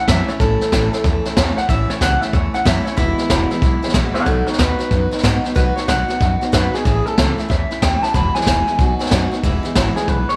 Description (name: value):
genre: rockabilly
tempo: 186 BPM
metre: 4/4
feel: swing 64% on 8ths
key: E major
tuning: A4 = 440 Hz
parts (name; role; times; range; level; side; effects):
- electric guitar through a small old amp; melody; 0.0-10.4 s; D#4 to B5; -24 LUFS; equal; tape echo
- picked steel-string acoustic guitar; accompaniment; 0.0-10.4 s; E2 to F#4; -25 LUFS; equal; none
- upright bass; bass; 0.1-10.3 s; E1 to G#2; -23 LUFS; equal; none
- jazz brush drum kit; drums; 0.1-10.3 s; hi-hat, kick drum, snare drum; -21 LUFS; equal; none
room: light reverb, small room ambience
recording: none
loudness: -17 LUFS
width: mono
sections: 0.0-9.4 A section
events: none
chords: 0.0 A; 3.0 E; 4.3 B; 6.9 A; 8.1 E; 8.8 B; 9.4 E